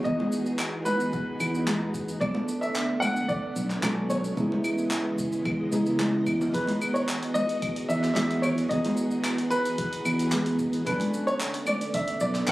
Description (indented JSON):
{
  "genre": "sunset chillout",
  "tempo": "111 BPM",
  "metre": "4/4",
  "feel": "straight",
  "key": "E major",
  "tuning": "A4 = 440 Hz",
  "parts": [
    { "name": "warm baby grand piano", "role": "melody", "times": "0.0-12.5 s", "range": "B4 to F#5", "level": "-30 LUFS", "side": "equal", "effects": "digital delay" },
    { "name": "nylon-string guitar", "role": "accompaniment", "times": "0.0-12.5 s", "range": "B3 to B4", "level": "-31 LUFS", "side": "right 1 dB", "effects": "auto-pan, digital delay" },
    { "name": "soft string machine", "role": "sustained chords", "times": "0.0-12.5 s", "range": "C#3 to D#5", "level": "-34 LUFS", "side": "equal", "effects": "ensemble chorus" },
    { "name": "fretless electric bass", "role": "bass", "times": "0.1-12.5 s", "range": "B1 to E2", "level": "-28 LUFS", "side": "equal", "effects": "none" },
    { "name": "deep house drum kit", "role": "drums", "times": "0.1-12.5 s", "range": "claves, handclaps, hi-hat, shaker", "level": "-33 LUFS", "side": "equal", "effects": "none" },
    { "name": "electronic kick drum", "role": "drums", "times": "0.1-12.1 s", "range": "none", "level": "-36 LUFS", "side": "equal", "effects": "none" },
    { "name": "congas", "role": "percussion", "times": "0.2-12.5 s", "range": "none", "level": "-33 LUFS", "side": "equal", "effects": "none" }
  ],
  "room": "light reverb, digital ambience",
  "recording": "recorded on a phone in the room, club reverb, compression",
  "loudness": "-24 LUFS",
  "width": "side -17 dB against mid",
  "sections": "0.0-12.5 A section",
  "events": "none",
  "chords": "0.0 Emaj7; 2.2 Bm7; 4.4 C#m7; 6.5 Emaj7; 10.9 Bm7"
}